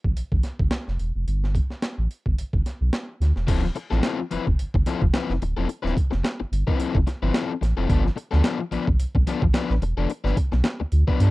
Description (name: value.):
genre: funk.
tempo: 109 BPM.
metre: 4/4.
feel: swing 56% on 16ths.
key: D dorian.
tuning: A4 = 439 Hz.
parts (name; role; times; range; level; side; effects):
sub bass with octave; bass; 0.0-11.3 s; D1 to G2; -22 LUFS; equal; none.
breakbeat sampler-style drum kit; drums; 0.0-11.3 s; crash cymbal, hi-hat, kick drum, snare drum; -24 LUFS; equal; none.
crunchy overdriven guitar; accompaniment; 3.5-11.3 s; F3 to B4; -26 LUFS; left 6 dB; none.
room: little or no reverb.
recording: dry, close 1970s-style studio recording.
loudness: -21 LUFS.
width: side -19 dB against mid.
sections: 0.0-3.5 A section; 3.5-11.3 B section.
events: none.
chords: 0.0 Gsus2; 3.5 Dm9; 7.9 G9.